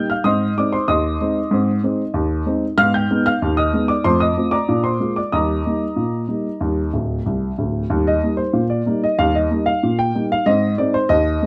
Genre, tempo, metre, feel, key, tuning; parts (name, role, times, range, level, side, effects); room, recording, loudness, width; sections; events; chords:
ragtime piano; 94 BPM; 2/4; straight; Eb major; A4 = 442 Hz
warm upright piano; solo; 0.0-11.5 s; D1 to G6; -19 LUFS; equal
moderate small room ambience, RT60 0.5 s; dark, warm production; -19 LUFS; mono
0.0-7.9 A section; 7.9-11.5 A section
upright piano fill 6.9-7.9
0.2 Ab; 2.8 Abm; 4.0 F7; 4.7 Bb7; 5.3 Eb; 10.5 Ab